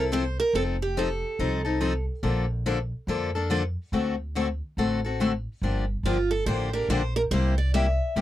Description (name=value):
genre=acoustic string swing (jazz manouche)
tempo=142 BPM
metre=4/4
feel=swing 62% on 8ths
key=F major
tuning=A4 = 440 Hz
part: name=picked steel-string acoustic guitar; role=melody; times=0.0-2.0, 6.1-8.2 s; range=F4 to E5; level=-28 LUFS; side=right 3 dB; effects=none
part: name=picked steel-string acoustic guitar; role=accompaniment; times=0.0-8.2 s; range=C3 to A4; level=-26 LUFS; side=left 3 dB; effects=none
part: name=upright bass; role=bass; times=0.0-8.2 s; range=F1 to F2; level=-28 LUFS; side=equal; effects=none
room=little or no reverb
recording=dry, close 1970s-style studio recording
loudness=-24 LUFS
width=side -13 dB against mid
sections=0.0-8.2 A section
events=none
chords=0.0 Fmaj7; 0.5 F7; 2.2 Bbmaj7; 3.9 D7; 5.6 Gm7; 7.3 C7